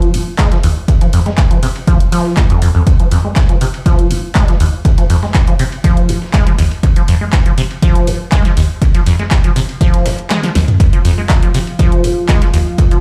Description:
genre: acid house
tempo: 121 BPM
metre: 4/4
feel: straight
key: F minor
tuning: A4 = 440 Hz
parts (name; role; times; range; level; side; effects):
- acid bass, saw; riff; 0.0-13.0 s; Eb2 to Ab3; -18 LUFS; equal; tube saturation, lush chorus, dub echo
- punchy analog drum machine; drums; 0.0-13.0 s; handclaps, hi-hat, snare drum, toms; -23 LUFS; equal; none
- dusty soul sampler-style drum kit; drums; 0.1-13.0 s; ride cymbal, snare drum; -33 LUFS; equal; overdrive, high-pass filter on cymbals, high-pass filter on snare, high-pass filter on room
- electronic kick drum; drums; 0.4-12.9 s; none; -14 LUFS; equal; none
- dark analog pad; sustained chords; 10.8-13.0 s; F4 to F5; -23 LUFS; equal; chorus, sidechain pumping
room: light reverb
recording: played on a big sound system in a bare room, large studio reverb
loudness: -12 LUFS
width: mono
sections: 0.0-13.0 A section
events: filter sweep on acid bass 0.0-13.0; kick drops out 10.3-10.8; drum fill 10.3-10.8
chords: none

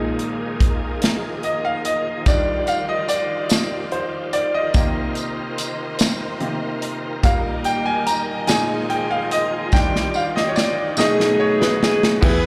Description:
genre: slow gospel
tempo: 48 BPM (dotted quarters)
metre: 6/8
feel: straight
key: Eb major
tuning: A4 = 441 Hz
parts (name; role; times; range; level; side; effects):
- bright concert grand piano; accompaniment; 0.0-12.5 s; E2 to Bb5; -24 LUFS; equal; slapback echo
- bright tonewheel organ; sustained chords; 0.0-12.5 s; Bb2 to B4; -32 LUFS; equal; slow rotary speaker, overdrive, chorus vibrato
- warm studio string section; sustained chords; 0.0-12.2 s; Eb3 to Eb5; -33 LUFS; equal; none
- natural country drum kit; drums; 0.2-12.4 s; crash cymbal, hi-hat, kick drum, snare drum; -22 LUFS; equal; none
- tambourine; percussion; 2.3-11.4 s; none; -32 LUFS; equal; none
- bright saxophone section; melody; 11.0-12.5 s; D#4 to B4; -21 LUFS; equal; slapback echo
room: light reverb, studio reverb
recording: live gig heard through the venue's PA, club reverb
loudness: -20 LUFS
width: mono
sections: 0.0-12.2 A section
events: grand piano solo 0.0-12.2; drum fill 9.7-12.2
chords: 0.0 Bb7sus4; 2.3 Ebmaj9; 4.8 Cm7; 7.2 Eb/Bb; 9.7 Ebmaj9; 11.0 B7

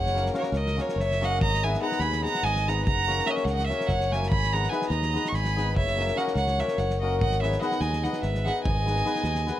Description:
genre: balkan folk, Balkan wedding band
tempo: 289 BPM (eighths)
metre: 7/8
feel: straight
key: G# minor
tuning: A4 = 439 Hz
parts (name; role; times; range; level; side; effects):
- rich violin; melody; 0.0-9.6 s; C#5 to C#6; -28 LUFS; right 3 dB; none
- warm violin; second line; 0.0-9.6 s; A#4 to A#5; -34 LUFS; left 3 dB; none
- modern bright fingered electric bass; bass; 0.0-9.5 s; F#1 to D#2; -28 LUFS; equal; none
- hammered dulcimer; accompaniment; 0.1-9.6 s; A#3 to B4; -30 LUFS; left 5 dB; none
- loose indie drum kit; percussion; 0.1-9.5 s; kick drum, snare drum; -32 LUFS; equal; none
room: light reverb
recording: close, detailed microphones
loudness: -23 LUFS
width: side -12 dB against mid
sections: 0.0-9.6 A section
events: none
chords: 0.0 F#; 1.4 G#m; 2.9 F#; 4.3 G#m; 5.8 F#; 7.2 G#m

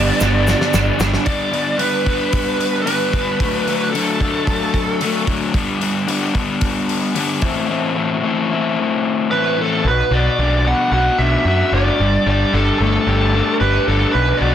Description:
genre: indie rock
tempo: 112 BPM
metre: 4/4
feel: straight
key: G major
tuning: A4 = 440 Hz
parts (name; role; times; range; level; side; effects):
- bluesy overdriven lead guitar; melody; 0.0-5.2, 9.3-14.5 s; A4 to F#5; -19 LUFS; right 1 dB; distortion
- raw garage guitar; riff; 0.0-14.5 s; G2 to G4; -19 LUFS; left 3 dB; overdrive
- twelve-string electric guitar; riff; 0.0-1.3 s; G2 to D4; -22 LUFS; right 9 dB; analog chorus
- fuzz picked electric bass; bass; 0.0-1.2, 9.8-14.5 s; F#1 to F#2; -18 LUFS; equal; overdrive
- loose indie drum kit; drums; 0.2-7.5 s; hi-hat, kick drum, snare drum; -22 LUFS; equal; soft clipping on snare
- egg shaker; percussion; 0.2-1.1 s; none; -31 LUFS; left 5 dB; none
room: studio ambience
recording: dense, heavily limited modern master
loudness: -15 LUFS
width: side -10 dB against mid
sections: 0.0-1.3 A section; 1.3-9.8 B section; 9.8-14.5 C section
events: drum fill 0.2-1.3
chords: 0.0 G; 3.4 D; 5.5 G; 7.4 Am; 9.8 Bm; 12.0 Gsus2

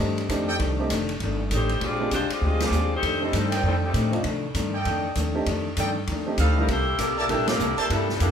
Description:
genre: jazz, big band swing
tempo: 197 BPM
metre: 4/4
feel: swing 62% on 8ths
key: F mixolydian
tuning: A4 = 442 Hz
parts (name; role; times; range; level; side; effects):
- vintage hollow-body jazz guitar; accompaniment; 0.0-8.3 s; F2 to A4; -30 LUFS; left 3 dB; none
- warm baby grand piano; accompaniment; 0.0-8.1 s; G3 to A4; -29 LUFS; right 2 dB; none
- upright bass; bass; 0.0-8.3 s; F1 to C3; -26 LUFS; equal; none
- swinging big-band drum kit; drums; 0.2-8.3 s; hi-hat, kick drum, ride cymbal, snare drum; -31 LUFS; equal; none
- clear trumpet section; stabs; 0.5-0.6, 3.5-7.9 s; A4 to A5; -29 LUFS; right 3 dB; none
- dark saxophone section; melody; 1.5-4.1, 6.4-8.3 s; Eb3 to E5; -26 LUFS; left 2 dB; none
room: moderate large studio reverb, RT60 0.9 s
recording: band playing live in one room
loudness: -22 LUFS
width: side -8 dB against mid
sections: 0.0-8.3 A section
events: band accent 2.6, 7.4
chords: 0.0 F13; 1.8 Bb13; 3.0 F13; 6.7 C13

